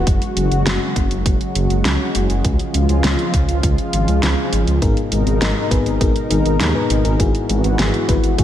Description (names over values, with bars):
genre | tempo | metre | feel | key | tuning
synthwave | 101 BPM | 4/4 | straight | G# minor | A4 = 438 Hz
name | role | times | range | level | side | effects
lush unison pad | sustained chords | 0.0-8.4 s | B2 to A#4 | -21 LUFS | equal | chorus, sidechain pumping
wide detuned saw bass | bass | 0.0-8.4 s | F#1 to D#2 | -18 LUFS | equal | chorus
electronic kick drum | drums | 0.1-8.4 s | none | -19 LUFS | equal | none
pop drum kit | drums | 0.1-8.4 s | hi-hat, snare drum | -23 LUFS | equal | gated reverb
FM electric piano with soft pad layer | stabs | 4.8-8.4 s | G#2 to B4 | -21 LUFS | left 4 dB | chorus, tremolo, ping-pong delay
room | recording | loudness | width
light reverb, digital ambience | none | -15 LUFS | side -11 dB against mid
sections
0.0-8.4 A section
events
none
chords
0.1 F#sus2; 2.4 C#; 4.8 G#madd9; 7.2 Eadd9/G#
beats
| 0.07 0.66 1.26 1.85 | 2.44 3.04 3.63 4.23 | 4.82 5.42 6.01 6.60 | 7.20 7.79 8.39